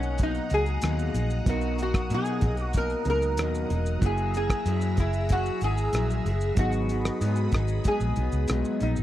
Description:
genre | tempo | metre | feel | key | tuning
indie pop, bedroom pop | 94 BPM | 4/4 | straight | unclear | A4 = 440 Hz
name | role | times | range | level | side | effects
lap resonator guitar | melody | 0.0-9.0 s | C#4 to A#4 | -30 LUFS | equal | analog chorus, slapback echo
electric guitar through a small old amp | accompaniment | 0.0-9.0 s | G#2 to G#4 | -32 LUFS | left 4 dB | lush chorus, warbly pitch drift
reed electric piano | accompaniment | 0.0-9.0 s | F#3 to A#4 | -37 LUFS | right 5 dB | none
phased string machine | sustained chords | 0.0-9.0 s | G#4 to E6 | -39 LUFS | right 1 dB | ensemble chorus, phaser
vintage muted fingered electric bass | bass | 0.0-9.0 s | E1 to B2 | -27 LUFS | equal | none
cloth-damped thuddy drum kit | drums | 0.0-9.0 s | hi-hat, kick drum, rim click, shaker | -27 LUFS | equal | none
room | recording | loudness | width
small room ambience | dry, close 1970s-style studio recording | -24 LUFS | side -13 dB against mid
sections
0.0-9.0 A section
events
none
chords
0.0 Bmaj7; 4.0 F#9; 6.6 G#m7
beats
0.19 0.83 | 1.47 2.11 2.74 3.38 | 4.02 4.66 5.30 5.94 | 6.57 7.21 7.85 8.49

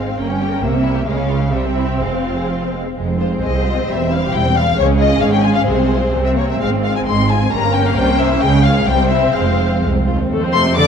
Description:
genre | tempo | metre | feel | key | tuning
quick classical-period movement for string orchestra | 122-139 BPM | 2/4 | rubato | F minor | A4 = 440 Hz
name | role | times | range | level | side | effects
dark studio violin section | melody | 0.0-10.9 s | C5 to D6 | -20 LUFS | left 6 dB | none
rich studio violin section | second line | 0.0-10.9 s | G3 to D5 | -22 LUFS | left 2 dB | none
warm studio viola section | accompaniment | 0.0-10.9 s | G3 to C5 | -20 LUFS | right 1 dB | none
rich studio cello section | bass | 0.0-10.9 s | C2 to D3 | -21 LUFS | right 3 dB | none
rich studio double bass section | bass | 0.0-10.9 s | E1 to F2 | -20 LUFS | right 2 dB | none
room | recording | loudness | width
moderate concert hall reverb, RT60 2.3 s | dark, warm production, tape saturation | -14 LUFS | side -7 dB against mid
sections
0.0-3.0 A section; 3.0-10.3 A section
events
none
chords
0.2 Gdim; 0.6 C7; 1.1 Db; 1.5 C; 2.0 Fm; 3.9 C/E; 4.8 Db; 5.7 Fm/C; 6.1 C5; 6.6 Fm/Ab; 7.5 Gdim; 8.0 C7b9; 8.4 Db; 8.9 C; 9.3 Fm; 10.3 F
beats
| 0.19 0.63 | 1.07 1.52 | 2.00 2.49 | 2.98 3.43 | 3.89 4.33 | 4.77 5.21 | 5.67 6.13 | 6.61 7.07 | 7.52 7.97 | 8.42 8.87 | 9.35 9.83 | 10.31 10.77

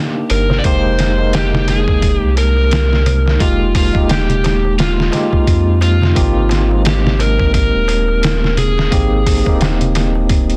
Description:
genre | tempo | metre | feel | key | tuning
trip hop | 87 BPM | 4/4 | swing 58% on 16ths | unclear | A4 = 440 Hz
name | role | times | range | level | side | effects
overdriven tine electric piano | accompaniment | 0.0-10.6 s | Ab3 to Bb4 | -22 LUFS | equal | tremolo, low-pass filter, tape echo
overdriven slide guitar | melody | 0.3-9.6 s | F4 to D5 | -22 LUFS | equal | vintage 12-bit sampler grit, tape echo
warm sub bass | bass | 0.3-10.6 s | Eb1 to F2 | -18 LUFS | equal | none
trip hop sampler-style drum kit | drums | 0.3-10.6 s | hi-hat, kick drum, snare drum | -19 LUFS | equal | none
darbuka | percussion | 0.3-10.5 s | none | -28 LUFS | equal | none
room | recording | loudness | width
digital ambience | dense, heavily limited modern master | -14 LUFS | mono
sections
0.0-10.6 A section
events
filter sweep on tine electric piano 0.0-10.6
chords
0.0 Cm7 (rootless); 0.6 Fm11; 6.2 Abmaj9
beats
| 0.64 1.33 2.02 2.71 | 3.40 4.09 4.78 5.47 | 6.16 6.85 7.54 8.23 | 8.92 9.61 10.30

